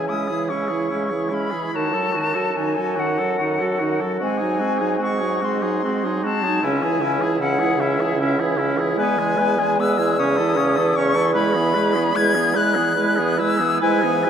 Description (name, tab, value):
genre	classical, slow romantic movement for wind quintet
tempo	50 BPM (dotted quarters)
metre	6/8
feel	uneven beats, rubato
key	C# minor, E major from 9.0 s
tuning	A4 = 441 Hz
part	silver concert flute	melody	0.0-14.3 s	E5 to G#6	-23 LUFS	left 5 dB	none
part	clear oboe	second line	0.0-14.3 s	E4 to C#5	-27 LUFS	left 2 dB	none
part	bright clarinet	accompaniment	0.0-14.3 s	G#3 to F#4	-26 LUFS	right 6 dB	none
part	warm French horn	accompaniment	0.0-14.3 s	C#3 to G#3	-25 LUFS	equal	none
part	mellow bassoon	bass	0.0-14.3 s	C#2 to C#3	-24 LUFS	right 3 dB	none
room	wet cathedral reverb, RT60 5.2 s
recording	in a vast, echoing space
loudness	-18 LUFS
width	side -8 dB against mid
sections	0.0-14.3 A section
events	none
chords	0.0 C#m; 1.7 D#dim/F#; 4.2 G#7; 6.6 C#m; 9.0 E; 10.2 A/E; 11.4 E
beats	0.49 | 1.74 2.98 | 4.21 5.43 | 6.64 7.79 | 8.98 10.18 | 11.36 12.56 | 13.83